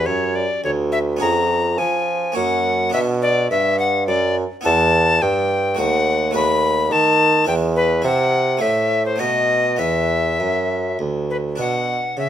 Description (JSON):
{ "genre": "classical, baroque-style sonata movement with continuo", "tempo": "105 BPM", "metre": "3/4", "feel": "straight", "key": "B minor, E minor from 4.6 s", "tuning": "A4 = 439 Hz", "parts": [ { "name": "bright alto recorder", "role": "melody", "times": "0.0-12.3 s", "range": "B4 to B5", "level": "-19 LUFS", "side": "left 3 dB", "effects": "none" }, { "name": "harpsichord", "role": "accompaniment", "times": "0.0-12.3 s", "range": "D2 to C#5", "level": "-27 LUFS", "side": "right 1 dB", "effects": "none" }, { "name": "mellow bassoon", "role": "bass", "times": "0.0-12.3 s", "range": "D2 to E#3", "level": "-20 LUFS", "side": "right 2 dB", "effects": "none" } ], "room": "light reverb", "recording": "minimal, uncompressed stereo recording", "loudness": "-16 LUFS", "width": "side -10 dB against mid", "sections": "0.0-11.6 A section", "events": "none", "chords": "0.0 C#(b5, no3); 1.2 C#7/E#; 2.4 F#; 2.9 Bm; 4.6 Em; 5.8 D#dim7; 6.3 B7/D#; 7.5 E5; 8.0 C; 8.6 Am; 9.2 B7; 9.8 E5; 11.6 Bm" }